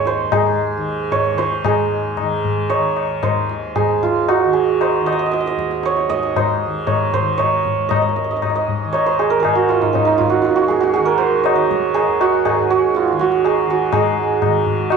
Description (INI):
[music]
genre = indian classical, Hindustani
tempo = 112-123 BPM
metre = 3/4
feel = straight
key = Eb raga bageshri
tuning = A4 = 440 Hz
[part]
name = santur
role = melody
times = 0.0-15.0 s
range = Db4 to Eb5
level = -16 LUFS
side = right 6 dB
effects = slapback echo
[part]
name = tanpura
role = drone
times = 0.0-15.0 s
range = Eb2 to Eb3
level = -27 LUFS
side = left 2 dB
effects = none
[part]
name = tabla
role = percussion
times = 0.1-15.0 s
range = none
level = -21 LUFS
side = left 10 dB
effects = none
[sound]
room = light reverb, studio ambience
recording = 1960s-style stereo with parts hard left and right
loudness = -15 LUFS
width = side -5 dB against mid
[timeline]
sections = 0.0-1.7 A section; 1.7-13.9 B section; 13.9-15.0 A section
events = speeding up 0.0-15.0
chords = none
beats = | 0.06 0.59 1.12 | 1.65 2.18 2.71 | 3.23 3.76 4.28 | 4.80 5.33 5.84 | 6.36 6.88 7.39 | 7.90 8.41 8.92 | 9.43 9.94 10.44 | 10.94 11.45 11.95 | 12.44 12.94 13.44 | 13.93 14.42 14.91